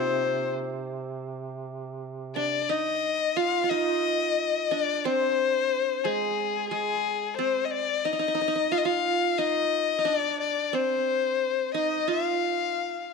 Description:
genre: Arabic maqam ensemble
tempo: 90 BPM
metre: 4/4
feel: straight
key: unclear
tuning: A4 = 441 Hz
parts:
  - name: rich violin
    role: melody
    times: 0.0-13.1 s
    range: Ab4 to F5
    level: -25 LUFS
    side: left 9 dB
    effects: none
  - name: qanun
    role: second line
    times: 0.0-13.1 s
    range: Ab3 to F4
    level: -30 LUFS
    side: right 11 dB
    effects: tape echo
  - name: mellow duduk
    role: drone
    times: 0.0-2.8 s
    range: C3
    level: -35 LUFS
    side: right 4 dB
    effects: none
room: moderate echo chamber reverb, RT60 2.6 s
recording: 1960s-style stereo with parts hard left and right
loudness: -24 LUFS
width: side -4 dB against mid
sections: 0.0-2.7 A section; 2.7-13.1 B section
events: none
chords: none

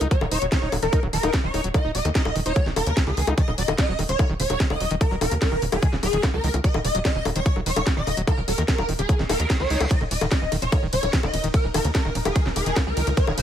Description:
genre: psychedelic trance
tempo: 147 BPM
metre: 4/4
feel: straight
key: Eb minor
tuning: A4 = 440 Hz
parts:
  - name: overdriven acid bass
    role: riff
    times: 0.0-13.4 s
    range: Db3 to Eb4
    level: -30 LUFS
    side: equal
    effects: auto-pan, sidechain pumping, digital delay
  - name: tight sequencer bass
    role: bass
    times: 0.0-13.4 s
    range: Eb1 to Eb2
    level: -26 LUFS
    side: equal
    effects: none
  - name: drum and bass drum kit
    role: drums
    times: 0.0-13.4 s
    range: bongos, hi-hat, ride cymbal, snare drum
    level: -27 LUFS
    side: left 2 dB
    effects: none
  - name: swarming rave lead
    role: melody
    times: 0.1-13.4 s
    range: Ab4 to Eb5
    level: -27 LUFS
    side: equal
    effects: chorus, phaser, sidechain pumping, ping-pong delay
  - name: electronic kick drum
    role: drums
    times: 0.1-13.3 s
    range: none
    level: -22 LUFS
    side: equal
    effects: none
  - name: reverse cymbal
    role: sound effects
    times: 9.3-9.9 s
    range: none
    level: -34 LUFS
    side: right 2 dB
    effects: none
  - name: swarming drone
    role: sustained chords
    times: 10.9-13.4 s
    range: Eb4 to Bb4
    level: -34 LUFS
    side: left 1 dB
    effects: built-in reverb, sidechain pumping
room: digital ambience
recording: none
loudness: -20 LUFS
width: side -10 dB against mid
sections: 0.0-13.4 A section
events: reverse cymbal 9.3-9.9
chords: 0.0 Eb5

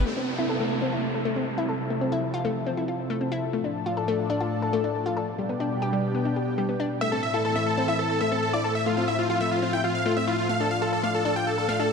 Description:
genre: trance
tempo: 138 BPM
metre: 4/4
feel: straight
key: A minor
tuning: A4 = 440 Hz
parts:
  - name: analog string pad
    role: sustained chords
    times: 0.0-11.9 s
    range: A2 to A4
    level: -28 LUFS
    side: left 1 dB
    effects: ensemble chorus
  - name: analog pluck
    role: arpeggios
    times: 0.0-11.8 s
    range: G3 to A4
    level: -28 LUFS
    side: left 4 dB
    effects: chorus, dub echo
  - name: downlifter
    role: sound effects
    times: 0.1-3.5 s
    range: none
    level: -32 LUFS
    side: right 2 dB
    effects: none
  - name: dense compressed supersaw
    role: melody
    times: 7.0-11.9 s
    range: F4 to G5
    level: -25 LUFS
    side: right 1 dB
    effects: dub echo
room: moderate huge ambient reverb, RT60 4.1 s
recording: dark, warm production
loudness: -23 LUFS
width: side -5 dB against mid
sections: 0.1-11.9 A section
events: filter sweep on synth pluck 0.1-11.9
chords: 0.1 Am; 1.8 Fmaj7; 3.5 Dm; 5.3 G; 7.0 Am; 8.8 Fmaj7/A; 10.5 Dm

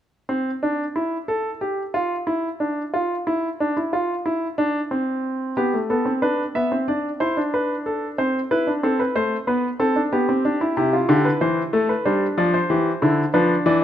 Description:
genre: classical, baroque-style 3-part fugue for grand piano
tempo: 92 BPM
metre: 4/4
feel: straight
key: unclear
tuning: A4 = 440 Hz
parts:
  - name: clear baby grand piano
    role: solo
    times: 0.3-13.8 s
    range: C3 to E5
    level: -19 LUFS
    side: equal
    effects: none
room: moderate recital hall reverb, RT60 1.7 s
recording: close, detailed microphones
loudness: -19 LUFS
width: side -10 dB against mid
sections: 0.3-13.8 A section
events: none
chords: 0.3 N.C.; 5.6 G; 6.9 D5; 8.2 D5/C; 9.5 G/B; 10.8 C; 12.1 G5

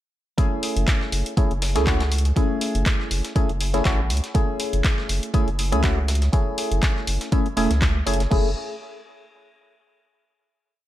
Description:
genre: deep house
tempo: 121 BPM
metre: 4/4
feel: swing 55% on 16ths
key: F# minor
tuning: A4 = 445 Hz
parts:
  - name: percussive organ stab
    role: stabs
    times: 0.4-8.5 s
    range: A3 to G#4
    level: -26 LUFS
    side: left 1 dB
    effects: chorus, phaser, sidechain pumping, tape echo
  - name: breakbeat sampler-style drum kit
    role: drums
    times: 0.4-8.3 s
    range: hi-hat, snare drum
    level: -37 LUFS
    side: equal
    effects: none
  - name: electronic kick drum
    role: drums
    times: 0.4-8.4 s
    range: none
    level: -21 LUFS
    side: equal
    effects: overdrive
  - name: punchy analog drum machine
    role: drums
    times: 0.4-8.4 s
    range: crash cymbal, handclaps, hi-hat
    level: -28 LUFS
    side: equal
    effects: none
  - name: round analog bass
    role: bass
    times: 0.8-8.5 s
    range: E1 to C#2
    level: -22 LUFS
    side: equal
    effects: sidechain pumping
room: light reverb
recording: none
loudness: -19 LUFS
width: side -13 dB against mid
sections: 0.4-8.3 drop; 8.3-10.3 final chord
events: drop 0.4-8.3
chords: 0.4 F#m9

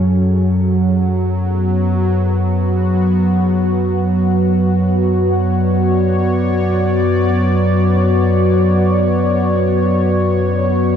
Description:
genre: dark ambient drone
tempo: free time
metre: none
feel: none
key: unclear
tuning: A4 = 440 Hz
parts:
  - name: sweeping resonant pad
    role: sustained chords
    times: 0.0-11.0 s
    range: F#3 to D5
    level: -16 LUFS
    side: equal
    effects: chorus, shimmer reverb
  - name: deep rumbling drone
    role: drone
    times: 0.0-11.0 s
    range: F#2 to F#3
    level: -16 LUFS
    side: left 1 dB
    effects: built-in reverb
room: wet huge ambient reverb, RT60 7.9 s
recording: none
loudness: -13 LUFS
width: side -8 dB against mid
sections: 0.0-11.0 A section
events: none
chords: 0.1 Bmadd9/F#

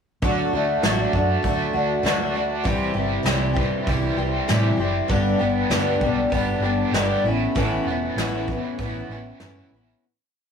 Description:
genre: folk rock and heartland rock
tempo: 98 BPM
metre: 4/4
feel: straight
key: D major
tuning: A4 = 439 Hz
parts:
  - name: picked twelve-string acoustic guitar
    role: accompaniment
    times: 0.2-10.0 s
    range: G2 to G4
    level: -23 LUFS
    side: left 2 dB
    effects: none
  - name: raw garage guitar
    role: riff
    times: 0.2-10.0 s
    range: G2 to G4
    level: -27 LUFS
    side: right 3 dB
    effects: overdrive, harmonic tremolo
  - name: hollow-body short-scale fingered electric bass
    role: bass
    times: 0.2-9.9 s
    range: E1 to A2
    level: -27 LUFS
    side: right 1 dB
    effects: none
  - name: soft brush drum kit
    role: drums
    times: 0.2-9.5 s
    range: hi-hat, kick drum, snare drum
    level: -26 LUFS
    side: equal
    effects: none
room: moderate studio reverb, RT60 0.5 s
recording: rough rehearsal-room recording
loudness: -20 LUFS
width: side -6 dB against mid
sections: 0.2-10.0 verse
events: fade-out 7.6-10.0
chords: 0.2 D; 2.7 C; 5.1 G; 7.2 Aadd9

